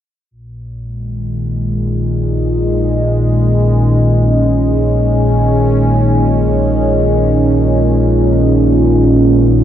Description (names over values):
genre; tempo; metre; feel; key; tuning
dark ambient drone; free time; none; none; Bb minor; A4 = 438 Hz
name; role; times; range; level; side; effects
sweeping resonant pad; sustained chords; 0.3-9.6 s; Bb2 to Db4; -13 LUFS; equal; chorus, phaser
deep rumbling drone; drone; 0.7-9.6 s; Bb1 to Bb2; -14 LUFS; equal; built-in reverb
room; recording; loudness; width
wet huge ambient reverb, RT60 7.0 s; dark, warm production; -10 LUFS; side -10 dB against mid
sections
0.3-9.6 A section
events
none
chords
0.3 Bbm